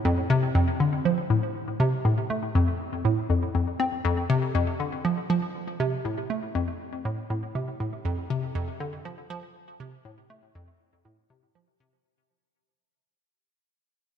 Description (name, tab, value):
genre	ambient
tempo	120 BPM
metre	4/4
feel	straight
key	unclear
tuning	A4 = 440 Hz
part	hollow square pluck	solo	0.1-11.9 s	F2 to C4	-24 LUFS	left 1 dB	chorus, tape echo
room	moderate lush hall reverb, RT60 3.0 s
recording	none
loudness	-24 LUFS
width	side -8 dB against mid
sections	0.0-12.1 A section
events	fade-out 4.0-12.1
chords	none